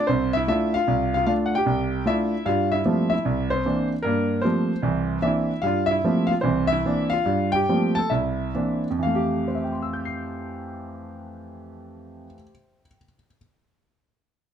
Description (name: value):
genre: solo jazz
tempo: 128-152 BPM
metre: 4/4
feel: swing 67% on 8ths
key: F major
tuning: A4 = 439 Hz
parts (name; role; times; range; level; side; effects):
- warm concert grand piano; solo; 0.0-13.4 s; C2 to C7; -21 LUFS; equal; none
room: light reverb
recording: dark, warm production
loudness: -21 LUFS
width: side -8 dB against mid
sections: 0.0-2.5 A section; 2.5-9.0 B section; 9.0-12.7 C section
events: slowing down 5.6-9.0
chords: 0.0 F6; 2.5 Gm11; 3.2 C9; 4.0 Gm11; 4.8 C9; 5.6 Gm11; 6.4 C9; 7.2 Gm11; 8.1 C9; 9.0 Fmaj9